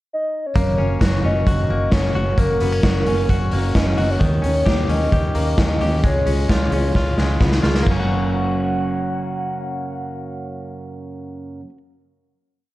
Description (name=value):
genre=jangly indie pop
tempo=131 BPM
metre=4/4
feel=straight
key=F# major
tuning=A4 = 440 Hz
part: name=hollow clarinet-like synth lead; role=melody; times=0.1-11.6 s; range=A#4 to F#5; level=-25 LUFS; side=left 1 dB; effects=chorus
part: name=picked steel-string acoustic guitar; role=accompaniment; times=0.5-11.8 s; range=F#2 to A#4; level=-26 LUFS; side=right 2 dB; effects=none
part: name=direct-recorded clean electric guitar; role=arpeggios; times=0.6-11.8 s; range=D#3 to G4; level=-27 LUFS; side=left 3 dB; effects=none
part: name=vintage muted fingered electric bass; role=bass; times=0.6-11.6 s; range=F#1 to D#2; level=-22 LUFS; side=equal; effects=none
part: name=raw garage drum kit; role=drums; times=0.6-8.0 s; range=crash cymbal, hi-hat, kick drum, snare drum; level=-20 LUFS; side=equal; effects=none
room=light reverb, studio ambience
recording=dark, warm production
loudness=-16 LUFS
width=side -17 dB against mid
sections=0.0-0.6 pickup bar; 0.6-7.9 verse; 7.9-11.5 final chord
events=drum fill 7.0-7.9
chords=0.0 N.C.; 0.6 F#; 4.2 D#7; 6.0 C#; 7.9 F#